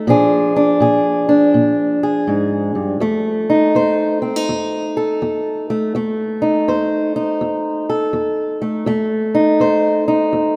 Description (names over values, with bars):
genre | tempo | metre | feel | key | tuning
blues | 82 BPM | 4/4 | swing 65% on 8ths | F mixolydian | A4 = 436 Hz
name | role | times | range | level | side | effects
fingerpicked acoustic archtop guitar | solo | 0.0-10.6 s | F2 to C5 | -17 LUFS | equal | none
room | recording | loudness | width
wet lush hall reverb, RT60 2.8 s | rough home demo mix | -17 LUFS | mono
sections
0.0-10.6 A section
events
none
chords
0.1 Bb7; 3.0 F7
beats
| 0.08 0.81 1.55 2.28 | 3.01 3.74 4.48 5.21 | 5.94 6.67 7.41 8.14 | 8.87 9.60 10.33